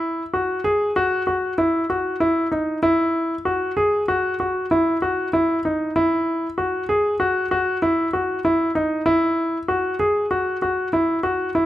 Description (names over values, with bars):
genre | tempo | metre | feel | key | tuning
contemporary instrumental, contemporary | 96 BPM | 5/4 | straight | E major | A4 = 440 Hz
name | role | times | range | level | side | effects
clear concert grand piano | solo | 0.0-11.7 s | D#4 to G#4 | -19 LUFS | equal | none
room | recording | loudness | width
moderate recital hall reverb, RT60 1.4 s | close, detailed microphones | -19 LUFS | side -13 dB against mid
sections
0.0-11.7 A section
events
none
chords
none